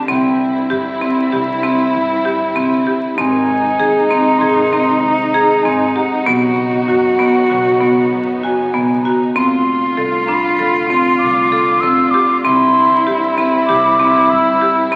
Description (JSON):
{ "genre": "contemporary instrumental, chamber music in an uneven meter", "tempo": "97 BPM", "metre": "5/4", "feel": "straight", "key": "unclear", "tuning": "A4 = 440 Hz", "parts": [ { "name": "mellow wooden flute", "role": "melody", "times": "0.0-15.0 s", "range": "Gb5 to E6", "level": "-19 LUFS", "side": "equal", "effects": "none" }, { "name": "rich cello", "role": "second line", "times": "0.0-15.0 s", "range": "Eb4 to F#4", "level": "-19 LUFS", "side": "equal", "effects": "none" }, { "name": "clear studio string section", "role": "sustained chords", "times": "0.0-15.0 s", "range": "C3 to F4", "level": "-28 LUFS", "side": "equal", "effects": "none" }, { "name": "marimba with hard mallets", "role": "arpeggios", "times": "0.1-15.0 s", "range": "B3 to A4", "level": "-19 LUFS", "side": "equal", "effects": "none" }, { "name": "upright bass", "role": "bass", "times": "0.1-15.0 s", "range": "F1 to G2", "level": "-34 LUFS", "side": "equal", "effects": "none" } ], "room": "wet recital hall reverb, RT60 1.5 s", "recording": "very old 78 rpm record, vinyl crackle", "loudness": "-14 LUFS", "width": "mono", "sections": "0.0-15.0 A section", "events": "none", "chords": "0.1 Cadd9; 3.2 Ab; 6.3 Badd9; 9.4 F6; 12.5 Cadd9", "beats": "| 0.08 0.70 1.32 1.94 2.56 | 3.18 3.79 4.41 5.03 5.65 | 6.27 6.89 7.50 8.12 8.74 | 9.36 9.98 10.60 11.22 11.84 | 12.45 13.07 13.69 14.31 14.93" }